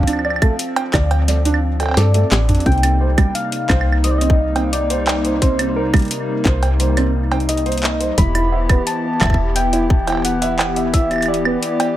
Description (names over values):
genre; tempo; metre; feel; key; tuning
IDM; 87 BPM; 4/4; straight; unclear; A4 = 441 Hz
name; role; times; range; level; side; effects
soft struck synth lead; melody; 0.0-12.0 s; Bb4 to B5; -24 LUFS; left 2 dB; chorus, dub echo
hollow soft pad; sustained chords; 0.0-12.0 s; C3 to G4; -23 LUFS; left 1 dB; chorus, sidechain pumping
woody FM bass; bass; 0.0-11.6 s; E1 to G2; -19 LUFS; equal; none
electronic kick drum; drums; 0.0-11.1 s; none; -15 LUFS; equal; none
felt-muted upright piano; arpeggios; 0.1-11.6 s; G3 to E5; -24 LUFS; right 4 dB; vintage 12-bit sampler grit, tape echo
booming analog drum machine; drums; 0.1-11.9 s; claves, cowbell, handclaps, hi-hat, snare drum, toms; -22 LUFS; right 2 dB; none
room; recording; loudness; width
light reverb; echo-heavy mix; -14 LUFS; side -13 dB against mid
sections
0.0-12.0 A section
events
drum fill 1.3-2.7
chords
0.0 Dm7; 2.7 Cm7; 8.2 Em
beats
0.59 1.28 1.97 | 2.66 3.35 4.04 4.73 | 5.42 6.11 6.80 7.49 | 8.18 8.87 9.56 10.25 | 10.94 11.63